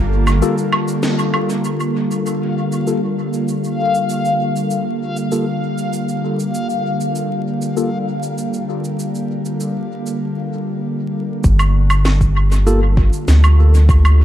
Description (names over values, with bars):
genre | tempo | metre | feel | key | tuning
ambient dub | 98 BPM | 4/4 | straight | G minor | A4 = 440 Hz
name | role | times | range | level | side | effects
airy breathy pad | sustained chords | 0.0-14.2 s | D3 to A4 | -20 LUFS | equal | chorus
soft dub sub bass | bass | 0.0-0.4, 11.4-14.2 s | G1 to D2 | -11 LUFS | equal | tube saturation
backwards swelling texture | texture | 0.0-10.2 s | Bb3 to F5 | -25 LUFS | left 2 dB | built-in reverb
electronic shaker, woodblock and snare drum | drums | 0.3-14.2 s | none | -23 LUFS | right 2 dB | dub echo
tine electric piano | stabs | 0.4-7.9, 12.7-12.8 s | Bb3 to A4 | -23 LUFS | left 2 dB | medium stereo tremolo, vintage 12-bit sampler grit, low-pass filter, dub echo
electronic kick drum | drums | 11.4-14.0 s | none | -16 LUFS | equal | none
room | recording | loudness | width
light reverb | echo-heavy mix, vinyl crackle | -15 LUFS | side -12 dB against mid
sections
0.0-1.6 A section; 1.6-11.4 B section; 11.4-14.2 C section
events
break 0.4-1.6; band accent 1.0-1.3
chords
0.0 Gm9